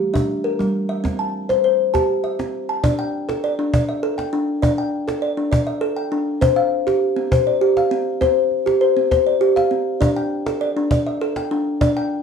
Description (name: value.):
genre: world meditative, meditative tuned percussion.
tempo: 100 BPM.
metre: 3/4.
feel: straight.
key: D minor.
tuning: A4 = 439 Hz.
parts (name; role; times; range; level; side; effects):
kalimba; arpeggios; 0.0-12.2 s; G3 to A5; -18 LUFS; left 1 dB; none.
cajon; percussion; 0.2-12.0 s; none; -21 LUFS; equal; none.
room: wet studio reverb, RT60 0.6 s.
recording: cassette tape.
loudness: -17 LUFS.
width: side -6 dB against mid.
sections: 0.0-2.8 A section; 2.8-12.2 B section.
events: none.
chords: 0.0 Gm; 1.0 C; 2.8 D5; 6.4 C5; 10.0 D5.